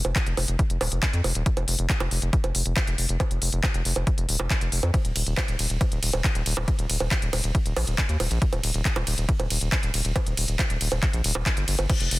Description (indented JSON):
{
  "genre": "psychedelic trance",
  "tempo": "138 BPM",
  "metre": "4/4",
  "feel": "straight",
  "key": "unclear",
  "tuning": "A4 = 435 Hz",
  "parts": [
    { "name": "round analog bass", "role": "bass", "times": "0.0-12.2 s", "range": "Eb1 to F2", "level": "-26 LUFS", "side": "equal", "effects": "none" },
    { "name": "techno drum kit", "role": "drums", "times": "0.0-12.2 s", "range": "bongos, crash cymbal, handclaps, hi-hat, ride cymbal", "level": "-27 LUFS", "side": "right 1 dB", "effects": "none" },
    { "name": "electronic kick drum", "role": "drums", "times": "0.2-12.0 s", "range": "none", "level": "-24 LUFS", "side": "equal", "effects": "none" }
  ],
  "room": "little or no reverb",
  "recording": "dense, heavily limited modern master",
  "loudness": "-22 LUFS",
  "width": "side -19 dB against mid",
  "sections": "0.0-12.2 A section",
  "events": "none",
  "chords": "none"
}